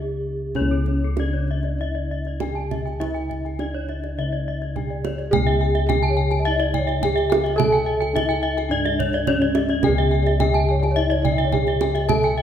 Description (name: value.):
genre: Balinese gamelan.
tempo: 95-106 BPM.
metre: 4/4.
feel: straight.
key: C# pelog.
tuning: A4 = 440 Hz.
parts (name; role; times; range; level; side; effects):
gamelan-type bronze metallophone; melody; 0.0-12.4 s; C#4 to A4-40c; -26 LUFS; right 1 dB; none.
gamelan-type bossed gongs; bass; 0.0-12.4 s; C#2 to A4-40c; -23 LUFS; left 1 dB; none.
kendang; percussion; 0.5-12.3 s; none; -27 LUFS; right 6 dB; none.
gamelan-type bronze metallophone; arpeggios; 0.6-12.4 s; A4-40c to A5-40c; -27 LUFS; left 5 dB; none.
gamelan-type bronze metallophone; arpeggios; 0.7-12.4 s; A4-40c to A5-40c; -30 LUFS; right 4 dB; none.
large celesta; second line; 6.1-12.4 s; C#5 to G#5-45c; -30 LUFS; left 1 dB; none.
room: moderate scoring stage reverb, RT60 1.8 s.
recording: none.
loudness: -19 LUFS.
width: side -9 dB against mid.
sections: 0.0-5.3 A section; 5.3-12.4 B section.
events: break 0.0-0.6.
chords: none.